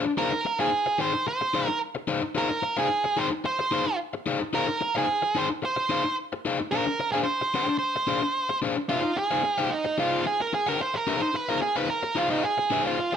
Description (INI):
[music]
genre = funk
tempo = 110 BPM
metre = 4/4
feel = straight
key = F dorian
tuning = A4 = 438 Hz
[part]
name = crunchy overdriven guitar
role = accompaniment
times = 0.0-13.2 s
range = D4 to G5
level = -28 LUFS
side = left 4 dB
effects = none
[part]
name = octave-fuzz lead guitar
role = melody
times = 0.2-13.2 s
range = Eb4 to C5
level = -25 LUFS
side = right 3 dB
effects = distortion
[sound]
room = light reverb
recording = none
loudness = -24 LUFS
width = side -8 dB against mid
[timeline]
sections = 0.0-8.9 A section; 8.9-13.2 B section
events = lead electric guitar solo 8.9-13.2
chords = 0.2 Fm7; 6.7 Dm7b5; 8.9 Fm7